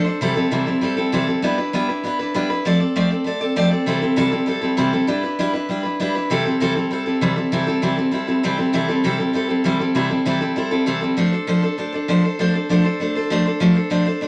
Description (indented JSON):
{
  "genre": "rock",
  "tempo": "197 BPM",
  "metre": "4/4",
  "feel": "straight",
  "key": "C major",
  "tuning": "A4 = 439 Hz",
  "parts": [
    { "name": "picked steel-string acoustic guitar", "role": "solo", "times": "0.0-14.3 s", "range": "C3 to D5", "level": "-20 LUFS", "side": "equal", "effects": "none" }
  ],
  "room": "wet studio reverb, RT60 0.5 s",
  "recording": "none",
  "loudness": "-20 LUFS",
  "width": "mono",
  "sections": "0.0-6.3 A section; 6.3-14.3 B section",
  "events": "none",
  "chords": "0.2 C6; 1.4 G6; 2.6 F6; 3.9 C6; 5.1 G6; 6.3 C6; 11.2 F6"
}